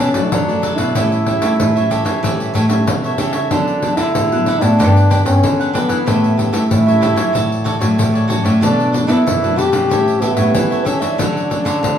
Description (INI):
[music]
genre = samba and choro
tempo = 94 BPM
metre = 4/4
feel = straight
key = D major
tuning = A4 = 440 Hz
[part]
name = breathy trombone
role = melody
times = 0.0-12.0 s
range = B3 to G4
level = -18 LUFS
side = equal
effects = none
[part]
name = cavaquinho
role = accompaniment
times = 0.0-11.8 s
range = D4 to F#5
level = -23 LUFS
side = right 3 dB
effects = none
[part]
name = nylon-string guitar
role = accompaniment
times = 0.0-12.0 s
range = F#2 to E4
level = -22 LUFS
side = left 1 dB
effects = none
[part]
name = nylon-string guitar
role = bass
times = 0.0-12.0 s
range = G2 to B3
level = -17 LUFS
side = equal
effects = none
[part]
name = pandeiro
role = percussion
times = 0.0-12.0 s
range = none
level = -21 LUFS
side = left 2 dB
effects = none
[sound]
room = wet large studio reverb, RT60 1.2 s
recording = band playing live in one room, small room ambience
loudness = -13 LUFS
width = side -9 dB against mid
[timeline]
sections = 0.0-12.0 A section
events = none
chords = 0.0 Bm7; 1.0 A7; 3.5 D69; 4.8 Gmaj7; 6.1 A7; 7.3 Dmaj9/A; 8.6 Bm7; 9.9 A7; 11.2 Dmaj7